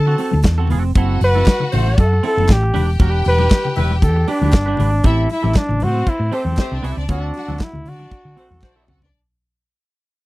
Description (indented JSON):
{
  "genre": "disco",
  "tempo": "117 BPM",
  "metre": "4/4",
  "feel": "straight",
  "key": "unclear",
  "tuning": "A4 = 438 Hz",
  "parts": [
    { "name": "warm flugelhorn", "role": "melody", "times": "0.0-8.9 s", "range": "C4 to B4", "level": "-21 LUFS", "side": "equal", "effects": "none" },
    { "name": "clear studio string section", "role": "second line", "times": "0.0-9.1 s", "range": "C4 to A5", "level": "-28 LUFS", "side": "left 2 dB", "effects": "none" },
    { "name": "hollow-body short-scale fingered electric bass", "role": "bass", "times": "0.0-9.1 s", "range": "E1 to D3", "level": "-17 LUFS", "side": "equal", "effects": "none" },
    { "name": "twangy electric guitar", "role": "accompaniment", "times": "0.1-9.1 s", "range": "C4 to B4", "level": "-26 LUFS", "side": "right 6 dB", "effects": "analog chorus" },
    { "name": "modern studio drum kit", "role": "drums", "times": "0.2-9.1 s", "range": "hi-hat, kick drum, snare drum, toms", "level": "-14 LUFS", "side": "equal", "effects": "none" },
    { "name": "congas", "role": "percussion", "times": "0.2-9.0 s", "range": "none", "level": "-27 LUFS", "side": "left 5 dB", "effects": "none" },
    { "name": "group handclap", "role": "percussion", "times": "0.4-8.7 s", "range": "none", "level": "-36 LUFS", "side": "left 3 dB", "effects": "none" },
    { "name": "mellow horn section", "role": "stabs", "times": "1.7-8.8 s", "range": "G3 to C5", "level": "-25 LUFS", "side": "equal", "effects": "none" }
  ],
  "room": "little or no reverb",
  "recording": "dry, close 1970s-style studio recording",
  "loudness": "-14 LUFS",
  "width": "side -19 dB against mid",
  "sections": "0.0-5.0 A section; 5.0-9.1 B section",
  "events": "fade-out 5.0-9.1; drum fill 8.6-9.1",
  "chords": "0.0 D7; 1.0 F#m7b5; 2.7 Em7; 5.0 Am7; 7.1 D7",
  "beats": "0.44 | 0.95 1.47 1.98 2.49 | 3.00 3.51 4.02 4.53 | 5.04 5.55 6.07 6.58 | 7.09 7.60 8.11 8.62"
}